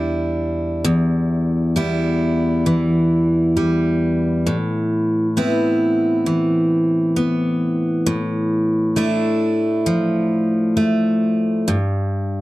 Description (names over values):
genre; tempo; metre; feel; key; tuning
pop; 66 BPM; 4/4; straight; unclear; A4 = 439 Hz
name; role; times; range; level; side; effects
picked steel-string acoustic guitar; solo; 0.0-12.4 s; E2 to E4; -16 LUFS; equal; none
room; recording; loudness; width
light reverb; dry, close 1970s-style studio recording; -16 LUFS; side -17 dB against mid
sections
0.8-12.4 A section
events
none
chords
0.0 Em7; 0.8 Em; 4.5 Amadd9; 8.1 Dmadd9/A; 11.7 G5